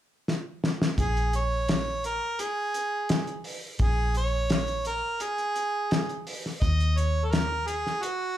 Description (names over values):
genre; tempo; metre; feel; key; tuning
straight-eighth soul blues; 85 BPM; 4/4; straight; Bb minor; A4 = 439 Hz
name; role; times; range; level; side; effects
cloth-damped thuddy drum kit; drums; 0.3-8.2 s; hi-hat, kick drum, snare drum; -28 LUFS; left 1 dB; none
bright harmonica; melody; 1.0-8.4 s; Gb4 to Eb5; -29 LUFS; right 2 dB; overdrive, slapback echo
vintage muted fingered electric bass; bass; 1.0-7.8 s; Bb1 to Eb2; -27 LUFS; equal; none
room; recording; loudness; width
light reverb; band playing live in one room; -25 LUFS; side -12 dB against mid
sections
1.0-8.4 A section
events
drum fill 0.3-1.0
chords
0.0 N.C.; 1.0 Bbm7; 6.6 Eb5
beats
0.28 | 0.98 1.69 2.39 3.10 | 3.80 4.51 5.21 5.92 | 6.62 7.33 8.03